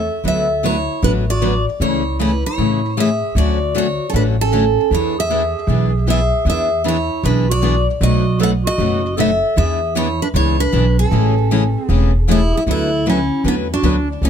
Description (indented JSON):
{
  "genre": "acoustic string swing (jazz manouche)",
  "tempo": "154 BPM",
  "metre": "4/4",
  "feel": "swing 64% on 8ths",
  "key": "unclear",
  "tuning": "A4 = 435 Hz",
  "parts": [
    { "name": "picked steel-string acoustic guitar", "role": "melody", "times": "0.0-14.3 s", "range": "B3 to F#5", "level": "-20 LUFS", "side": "equal", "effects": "tape echo" },
    { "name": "breathy clarinet", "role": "second line", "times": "0.0-14.3 s", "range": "C#4 to A4", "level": "-24 LUFS", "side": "right 5 dB", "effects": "none" },
    { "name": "upright bass", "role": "bass", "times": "0.0-14.3 s", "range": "E1 to A2", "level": "-18 LUFS", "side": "equal", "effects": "none" },
    { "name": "picked steel-string acoustic guitar", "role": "accompaniment", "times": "0.2-14.3 s", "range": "B2 to B4", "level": "-22 LUFS", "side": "left 10 dB", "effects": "none" },
    { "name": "picked steel-string acoustic guitar", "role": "accompaniment", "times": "0.2-14.3 s", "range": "B2 to B4", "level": "-25 LUFS", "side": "right 7 dB", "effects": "none" }
  ],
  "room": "light reverb",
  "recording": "close, detailed microphones",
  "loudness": "-14 LUFS",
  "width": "side -8 dB against mid",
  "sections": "0.2-12.7 A section; 12.7-14.3 A section",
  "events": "none",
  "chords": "0.2 D69; 1.8 Amaj7/C#; 3.4 Dmaj7; 4.9 E7; 8.0 B7; 9.6 E7; 11.1 Amaj7; 12.7 D69",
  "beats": "| 0.24 0.63 1.02 1.41 | 1.79 2.18 2.57 2.96 | 3.35 3.74 4.13 4.52 | 4.91 5.29 5.68 6.07 | 6.46 6.85 7.24 7.62 | 8.01 8.40 8.79 9.18 | 9.57 9.95 10.34 10.73 | 11.12 11.51 11.89 12.28 | 12.67 13.06 13.44 13.83 | 14.22"
}